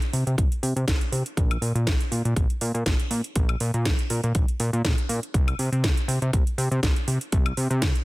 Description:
nu-disco, nu disco; 121 BPM; 4/4; swing 54% on 16ths; A4 = 440 Hz
house drum kit; drums; 0.0-8.0 s; hi-hat, snare drum, woodblock; -30 LUFS; right 1 dB
fat analog bass; bass; 0.1-7.9 s; Bb1 to C3; -24 LUFS; equal
electronic kick drum; drums; 0.4-7.9 s; -23 LUFS; equal
little or no reverb; dense, heavily limited modern master; -22 LUFS; side -20 dB against mid
0.0-8.0 A section

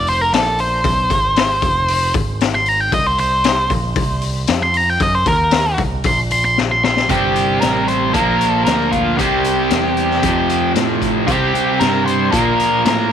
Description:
blues rock power trio and southern rock; 115 BPM; 4/4; straight; A4 = 440 Hz
octave-fuzz lead guitar; melody; 0.0-13.1 s; F4 to C6; -17 LUFS; equal; distortion, tape echo
overdriven picked electric bass; bass; 0.0-13.1 s; F1 to C3; -22 LUFS; right 1 dB
raw garage drum kit; drums; 0.1-13.0 s; hi-hat, kick drum, snare drum; -20 LUFS; left 4 dB
distorted electric guitar; riff; 7.1-13.1 s; F2 to C4; -16 LUFS; right 1 dB; distortion
light reverb, studio reverb; 1960s-style stereo; -13 LUFS; side -8 dB against mid
0.0-7.1 A section; 7.1-13.1 B section
lead electric guitar solo 0.0-7.1; drum fill 6.6-7.1
0.3 Bbsus2; 0.9 N.C.; 1.1 Ab; 1.6 F5; 2.2 N.C.; 2.9 Bbsus2; 4.5 Fsus24; 5.0 Cdim/Gb; 5.3 Eb5; 5.8 N.C.; 6.1 Bbsus2; 7.1 C5; 8.1 Bb; 9.2 C; 10.2 F; 11.3 C5; 12.3 Bb5

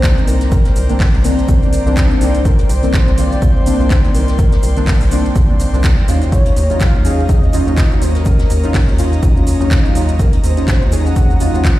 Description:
deep house; 124 BPM; 4/4; swing 56% on 16ths; C minor; A4 = 439 Hz
breathy flute-like synth lead; melody; 0.0-11.8 s; Bb4 to Gb5; -26 LUFS; left 1 dB; ensemble chorus, vintage 12-bit sampler grit, dub echo
airy breathy pad; sustained chords; 0.0-11.8 s; Db4 to C6; -27 LUFS; equal; chorus, sidechain pumping
deep mellow chord stab; stabs; 0.0-11.8 s; Eb3 to Ab4; -20 LUFS; left 1 dB; ensemble chorus, sidechain pumping, digital delay
rubbery square bass; bass; 0.0-11.8 s; C2 to Eb2; -16 LUFS; equal; sidechain pumping
electronic kick drum; drums; 0.0-11.8 s; -14 LUFS; equal
house drum kit; drums; 0.0-11.8 s; handclaps, hi-hat, shaker; -26 LUFS; right 1 dB
jazz brush drum kit; drums; 0.0-11.8 s; hi-hat, shaker, snare drum; -33 LUFS; left 1 dB; high-pass filter on hats, high-pass filter on snare, high-pass filter on perc, high-pass filter on room
digital ambience; played on a big sound system in a bare room, large studio reverb; -11 LUFS; side -16 dB against mid
0.0-11.8 A section
0.0 Cm9; 6.1 Ebm9

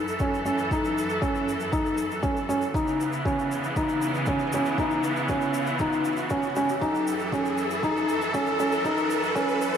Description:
piano and strings electronica; 118 BPM; 4/4; straight; F# dorian; A4 = 440 Hz
clear studio string section; sustained chords; 0.0-9.8 s; F#2 to A4; -28 LUFS; right 1 dB; sidechain pumping
riser; sound effects; 1.4-9.8 s; -34 LUFS; equal
shaker; drums; 0.1-9.8 s; -45 LUFS; left 2 dB
felt-muted upright piano; riff; 0.2-9.6 s; C#4 to D#4; -26 LUFS; equal; digital delay
electronic kick drum; drums; 0.2-9.5 s; -32 LUFS; equal; overdrive
wet lush hall reverb, RT60 1.6 s, small room ambience; high-pass filter; -23 LUFS; side -8 dB against mid
0.0-9.8 A section
build-up 0.0-9.8; riser 1.4-9.8
0.0 F#m7; 2.8 C#m7; 6.8 F#m7

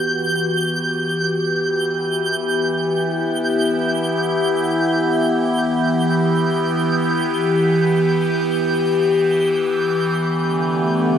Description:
ambient; free time; A4 = 439 Hz
evolving wavetable pad; sustained chords; 0.0-11.2 s; E3 to G4; -17 LUFS; left 1 dB; phaser, built-in reverb, shimmer reverb
twinkling granular texture; texture; 0.0-10.2 s; G6; -25 LUFS; right 2 dB; built-in reverb, shimmer reverb
organ-like drone; drone; 10.6-11.2 s; D3 to A3; -27 LUFS; left 1 dB; ensemble chorus, built-in reverb
wet cathedral reverb, RT60 6.5 s; -16 LUFS; side -8 dB against mid
0.0-10.2 A section; 10.2-11.2 B section
filter sweep on ambient pad 0.0-10.2
0.0 Em; 10.2 Em7

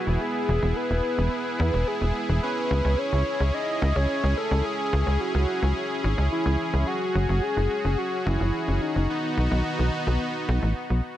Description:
synthwave; 108 BPM; 4/4; straight; A4 = 441 Hz
soft octave-layered synth lead; melody; 0.0-10.8 s; D#4 to D#5; -28 LUFS; equal; chorus, digital delay
soft supersaw; sustained chords; 0.0-11.2 s; B3 to G#4; -29 LUFS; equal; vintage 12-bit sampler grit
tight sequencer bass; bass; 0.1-11.0 s; E1 to E2; -23 LUFS; equal
light reverb; -22 LUFS; side -12 dB against mid
0.0-11.2 A section
0.0 E; 2.4 C#m; 6.9 F#sus2; 9.1 B

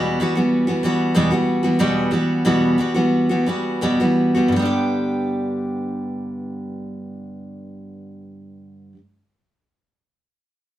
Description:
pop; 82-96 BPM; 4/4; straight; G major; A4 = 439 Hz
picked steel-string acoustic guitar; accompaniment; 0.0-9.0 s; E2 to G4; -18 LUFS; equal
wet studio reverb, RT60 0.5 s; band playing live in one room; -17 LUFS; side -13 dB against mid
0.0-4.5 A section; 4.5-7.4 B section
slowing down 0.0-4.5
0.0 Emadd9; 4.5 G

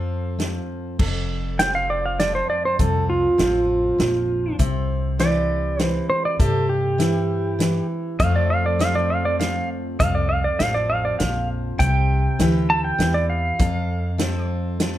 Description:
honky-tonk and classic country; 100 BPM; 3/4; straight; F major; A4 = 445 Hz
pedal steel guitar; melody; 0.0-14.5 s; F4 to A5; -22 LUFS; right 2 dB; plate reverb
picked steel-string acoustic guitar; accompaniment; 0.0-15.0 s; F2 to A4; -24 LUFS; left 1 dB
upright bass; bass; 0.0-15.0 s; F1 to G2; -25 LUFS; equal
vintage drum kit; drums; 0.4-14.9 s; crash cymbal, hi-hat, kick drum, snare drum; -24 LUFS; equal
moderate studio reverb, RT60 0.6 s; -19 LUFS; side -13 dB against mid
1.0-15.0 A section
pedal steel guitar solo 1.0-15.0
0.0 F; 4.6 C; 8.2 F; 11.8 C; 13.6 F

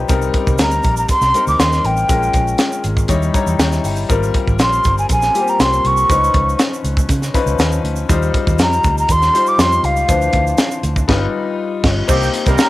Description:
polished 1980s jazz-funk pop; 120 BPM; 4/4; straight; C minor; A4 = 439 Hz
clear concert grand piano; accompaniment; 0.0-12.7 s; E3 to A#5; -21 LUFS; left 5 dB; lush chorus, cassette tape
vintage muted fingered electric bass; bass; 0.0-12.6 s; G1 to Db3; -19 LUFS; right 1 dB
crisp fusion drum kit; drums; 0.1-12.7 s; crash cymbal, hi-hat, kick drum, snare drum; -17 LUFS; equal; cassette tape
tube shaker; percussion; 0.1-12.7 s; -32 LUFS; right 8 dB
breathy hollow jazz flute; melody; 0.6-12.7 s; F5 to D6; -16 LUFS; equal; cassette tape
mellow horn section; second line; 12.1-12.7 s; Eb3 to Bb4; -21 LUFS; right 6 dB; cassette tape, analog delay
light reverb, small room ambience; home recording on cassette; -13 LUFS; side -17 dB against mid
0.0-12.1 A section
grand piano fill 3.1-4.1; band accent 11.1-12.1
0.1 Cm7; 2.1 Bbm7; 3.1 Eb7b9; 4.1 Abmaj13; 6.1 Db9; 8.1 Eb69; 10.1 Dm9; 11.1 G7b13; 12.1 Cm7

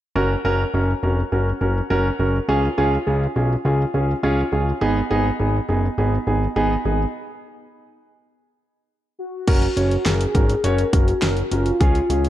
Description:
synth-pop; 103 BPM; 4/4; straight; F# major; A4 = 440 Hz
warm concert grand piano; accompaniment; 0.2-12.3 s; B3 to C#5; -22 LUFS; right 1 dB
fat analog bass; bass; 0.2-12.3 s; E#1 to C#2; -21 LUFS; equal
warm velvety synth lead; melody; 9.2-12.3 s; E#4 to A#4; -24 LUFS; left 1 dB; chorus, tape echo
pop drum kit; drums; 9.5-12.3 s; crash cymbal, hi-hat, kick drum, snare drum; -20 LUFS; equal
moderate concert hall reverb, RT60 2.1 s; dark, warm production; -18 LUFS; side -13 dB against mid
0.2-9.5 A section; 9.5-12.3 B section
stop 7.1-9.5
0.2 F#; 2.5 C#7; 4.8 G#m; 7.1 N.C.; 9.5 F#

